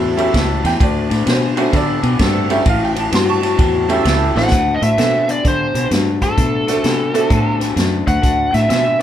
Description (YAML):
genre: electric blues shuffle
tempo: 129 BPM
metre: 4/4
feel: swing 66% on 8ths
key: D mixolydian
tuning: A4 = 441 Hz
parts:
  - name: tack piano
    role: accompaniment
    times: 0.0-7.7 s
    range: A3 to C#6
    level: -20 LUFS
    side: right 4 dB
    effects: none
  - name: electric guitar through a small old amp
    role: riff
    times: 0.0-9.0 s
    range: A2 to B3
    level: -20 LUFS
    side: left 6 dB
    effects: none
  - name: fingered electric bass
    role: bass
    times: 0.0-9.0 s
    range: A1 to D3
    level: -20 LUFS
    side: right 1 dB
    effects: none
  - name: mellow horn section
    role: stabs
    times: 0.2-4.4 s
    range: C4 to A4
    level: -24 LUFS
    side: right 4 dB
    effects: none
  - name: vintage drum kit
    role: drums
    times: 0.2-9.0 s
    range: hi-hat, kick drum, ride cymbal, snare drum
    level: -19 LUFS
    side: equal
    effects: none
  - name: biting lead guitar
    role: melody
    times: 4.4-9.0 s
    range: A4 to F#5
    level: -18 LUFS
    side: right 1 dB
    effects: overdrive
room: moderate large studio reverb, RT60 0.9 s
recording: band playing live in one room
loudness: -13 LUFS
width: side -10 dB against mid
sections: 0.0-4.5 A section; 4.5-9.0 B section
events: drum fill 4.3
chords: 0.0 A7; 0.8 D7; 2.7 A7; 4.5 D7